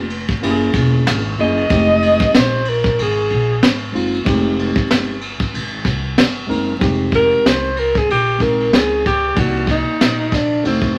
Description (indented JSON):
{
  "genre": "hip hop, jazz-hop",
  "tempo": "94 BPM",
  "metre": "4/4",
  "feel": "swing 58% on 16ths",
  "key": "F minor",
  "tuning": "A4 = 445 Hz",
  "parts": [
    { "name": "tine electric piano", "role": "accompaniment", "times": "0.0-11.0 s", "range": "G3 to D5", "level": "-23 LUFS", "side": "equal", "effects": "none" },
    { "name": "upright bass", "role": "bass", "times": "0.0-11.0 s", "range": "Fb1 to Db2", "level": "-24 LUFS", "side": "equal", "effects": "none" },
    { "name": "vintage brush drum kit", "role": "drums", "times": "0.1-11.0 s", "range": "hi-hat, kick drum, ride cymbal, snare drum", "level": "-20 LUFS", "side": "equal", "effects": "none" },
    { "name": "mellow alto saxophone", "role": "melody", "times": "1.4-11.0 s", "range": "C4 to Eb5", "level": "-19 LUFS", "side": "equal", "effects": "none" }
  ],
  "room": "moderate large studio reverb, RT60 1.2 s",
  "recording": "vinyl crackle",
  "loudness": "-16 LUFS",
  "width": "mono",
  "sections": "0.0-6.8 A section; 6.8-11.0 B section",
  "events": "alto saxophone solo 6.8-11.0",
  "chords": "0.4 Gb9; 1.7 Fm9; 9.4 Cm7b5"
}